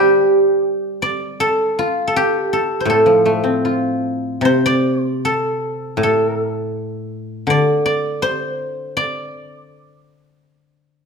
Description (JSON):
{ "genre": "chinese traditional, Chinese solo plucked strings", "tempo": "79 BPM", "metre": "4/4", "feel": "uneven beats, rubato", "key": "D yu mode", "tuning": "A4 = 441 Hz", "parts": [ { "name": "guzheng", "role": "solo", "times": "0.0-10.8 s", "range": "A2 to D5", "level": "-15 LUFS", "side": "equal", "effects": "none" } ], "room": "light reverb", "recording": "minimal, uncompressed stereo recording", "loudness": "-15 LUFS", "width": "side -5 dB against mid", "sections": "0.0-11.1 A section", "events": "none", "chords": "none" }